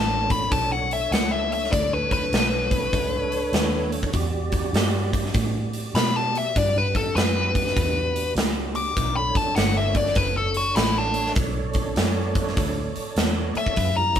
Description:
blues rock power trio and southern rock; 100 BPM; 4/4; swing 64% on 8ths; B minor; A4 = 440 Hz
nasal lead guitar with a parked wah; melody; 0.0-14.2 s; D4 to D6; -24 LUFS; left 3 dB; overdrive
tonewheel organ; sustained chords; 0.0-14.2 s; G3 to D5; -32 LUFS; right 4 dB; chorus vibrato, slow rotary speaker
vintage muted fingered electric bass; bass; 0.0-14.2 s; F#1 to B2; -27 LUFS; equal
big rock drum kit; drums; 0.3-14.2 s; hi-hat, kick drum, snare drum; -24 LUFS; equal
light reverb; band playing live in one room; -20 LUFS; side -9 dB against mid
0.0-14.2 A section
lead electric guitar solo 0.0-14.2
0.0 Bm7; 4.1 Em7; 9.0 Bm7
0.52 1.12 | 1.73 2.33 2.93 3.54 | 4.14 4.75 5.35 5.95 | 6.55 7.16 7.76 8.36 | 8.96 9.56 10.16 10.77 | 11.37 11.97 12.57 13.17 | 13.77

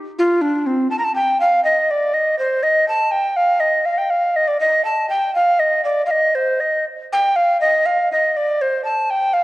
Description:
medieval; 121 BPM; 2/4; straight; A4 = 439 Hz
breathy tenor recorder; solo; 0.2-9.4 s; C4 to Bb5; -15 LUFS; equal
wet concert hall reverb, RT60 1.9 s; worn, warbling old tape, cassette tape, warbly pitch drift; -15 LUFS; side -18 dB against mid
0.0-1.6 A section; 1.6-9.4 B section
0.15 | 0.65 1.15 | 1.65 2.14 | 2.64 3.13 | 3.63 4.13 | 4.62 5.12 | 5.61 6.11 | 6.60 7.10 | 7.59 8.09 | 8.58 9.07

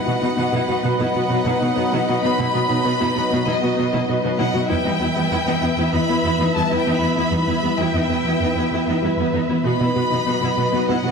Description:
cinematic, hybrid orchestral and electronic film score; 97 BPM; 4/4; straight; E harmonic minor; A4 = 440 Hz
rich chamber violin section; melody; 0.0-11.1 s; D#5 to B5; -25 LUFS; left 2 dB
warm symphonic violin section; second line; 0.0-11.1 s; B4 to E5; -26 LUFS; left 3 dB
analog drone; sustained chords; 0.0-11.1 s; E3 to B4; -24 LUFS; right 1 dB; chorus
rich symphonic viola section; accompaniment; 0.1-11.1 s; B3 to F#4; -25 LUFS; equal
thumb-piano-like synth pluck; arpeggios; 0.1-11.1 s; E3 to B4; -26 LUFS; left 4 dB; chorus, ping-pong delay
rich studio cello section; bass; 0.1-11.1 s; E2 to B2; -24 LUFS; right 3 dB
moderate scoring stage reverb, RT60 1.6 s; -17 LUFS; side -5 dB against mid
0.0-11.1 A section
0.0 B; 4.7 Em; 9.7 B
0.37 0.99 1.61 | 2.23 2.85 3.47 4.08 | 4.70 5.32 5.94 6.56 | 7.18 7.80 8.41 9.03 | 9.65 10.27 10.89

